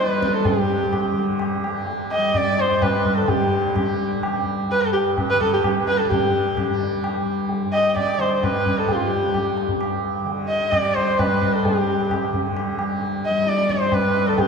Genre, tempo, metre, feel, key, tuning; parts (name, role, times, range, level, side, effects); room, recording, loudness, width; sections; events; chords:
indian classical, Hindustani; 129 BPM; 3/4; straight; G major; A4 = 441 Hz
warm sarangi; melody; 0.0-14.5 s; F4 to Eb5; -21 LUFS; equal
tanpura; drone; 0.0-14.5 s; G2 to G3; -26 LUFS; left 2 dB
tabla; percussion; 0.1-14.5 s; -24 LUFS; equal
wet cathedral reverb, RT60 4.6 s; recorded in a church or concert hall; -18 LUFS; side -5 dB against mid
0.0-6.1 A section; 6.1-14.5 A section
speeding up 0.0-14.5